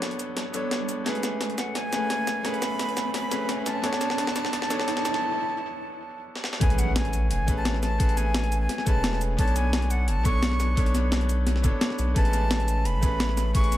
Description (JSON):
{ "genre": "liquid drum and bass", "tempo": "173 BPM", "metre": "4/4", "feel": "straight", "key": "A major", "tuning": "A4 = 440 Hz", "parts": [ { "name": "bright concert grand piano", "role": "accompaniment", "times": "0.0-13.8 s", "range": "G#3 to C#5", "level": "-31 LUFS", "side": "equal", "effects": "analog delay" }, { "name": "breakbeat sampler-style drum kit", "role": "drums", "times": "0.0-13.8 s", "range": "hi-hat, shaker, snare drum", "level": "-30 LUFS", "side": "left 1 dB", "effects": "overdrive, high-pass filter on snare, high-pass filter on hats, high-pass filter on perc, high-pass filter on room, analog delay" }, { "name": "riser and impact", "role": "sound effects", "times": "0.0-8.0 s", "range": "none", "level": "-32 LUFS", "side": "equal", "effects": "none" }, { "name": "breathy bright jazz flute", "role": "melody", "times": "1.6-13.8 s", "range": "F#5 to C#6", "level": "-30 LUFS", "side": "equal", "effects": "analog delay" }, { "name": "saturated sub bass", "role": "bass", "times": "6.6-13.8 s", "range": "E1 to B1", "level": "-25 LUFS", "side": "equal", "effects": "none" }, { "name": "electronic kick drum", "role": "drums", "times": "6.6-13.6 s", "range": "none", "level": "-23 LUFS", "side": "equal", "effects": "none" } ], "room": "moderate spring reverb, RT60 2.2 s", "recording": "echo-heavy mix", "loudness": "-23 LUFS", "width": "side -13 dB against mid", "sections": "0.0-6.6 A section; 6.6-13.8 B section", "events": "build-up 0.0-6.6; drum fill 0.0-5.2, 6.4; riser 0.0-5.2; break 5.2-6.6; drop 6.6-13.8; impact 6.6-8.0", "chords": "0.0 Bm9; 1.1 Amaj9; 3.8 Bm9; 6.6 Amaj9; 9.4 Bm9; 12.2 Amaj9" }